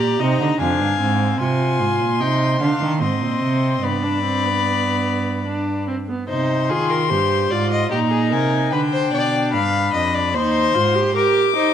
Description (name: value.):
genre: classical, baroque-style fugue for string quartet.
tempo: 74 BPM.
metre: 3/4.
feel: straight.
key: C minor.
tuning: A4 = 441 Hz.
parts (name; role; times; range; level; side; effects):
dark violin; melody; 0.0-11.7 s; G5 to D6; -23 LUFS; left 8 dB; none.
rich violin; second line; 0.0-11.7 s; G4 to Ab5; -24 LUFS; left 3 dB; none.
warm viola; accompaniment; 0.0-11.7 s; B3 to G4; -22 LUFS; right 2 dB; none.
rich cello; bass; 0.0-11.1 s; Eb2 to Eb3; -22 LUFS; right 3 dB; none.
room: moderate recital hall reverb, RT60 1.6 s.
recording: none.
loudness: -17 LUFS.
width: side -9 dB against mid.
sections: 0.0-6.3 A section; 6.3-11.7 B section.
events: none.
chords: 0.0 Eb; 0.6 Fm; 1.4 Ab; 3.0 Abadd9; 3.8 G; 6.3 Cm; 7.9 Eb5/Bb; 8.7 G7; 10.3 Cm/Eb; 11.2 Gm.